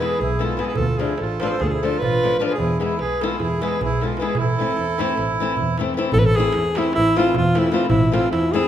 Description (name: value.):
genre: balkan folk, Balkan wedding band.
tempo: 302 BPM (eighths).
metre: 9/8.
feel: straight.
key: A harmonic minor.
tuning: A4 = 440 Hz.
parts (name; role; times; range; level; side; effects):
warm alto saxophone; melody; 0.0-8.7 s; E4 to C5; -21 LUFS; equal; none.
accordion; second line; 0.0-5.8 s; E4 to A4; -26 LUFS; right 4 dB; none.
flamenco guitar; accompaniment; 0.0-8.7 s; E3 to F4; -25 LUFS; left 4 dB; none.
rich double bass; bass; 0.0-8.7 s; A1 to E2; -25 LUFS; equal; none.
darbuka; percussion; 0.0-8.6 s; none; -27 LUFS; right 3 dB; none.
room: wet recital hall reverb, RT60 1.6 s.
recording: minimal, uncompressed stereo recording.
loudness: -18 LUFS.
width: side -10 dB against mid.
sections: 0.0-6.1 A section; 6.1-8.7 B section.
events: speeding up 0.0-8.7.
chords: 0.0 E; 0.8 Dm; 2.6 E; 4.4 Am.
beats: 0.16 0.36 0.57 | 0.77 0.97 1.17 1.37 1.57 1.77 1.98 2.17 2.38 | 2.58 2.77 2.98 3.17 3.37 3.57 3.77 3.97 4.17 | 4.37 4.57 4.76 4.96 5.16 5.36 5.55 5.75 5.95 | 6.15 6.34 6.54 6.74 6.93 7.13 7.33 7.52 7.72 | 7.92 8.11 8.31 8.51.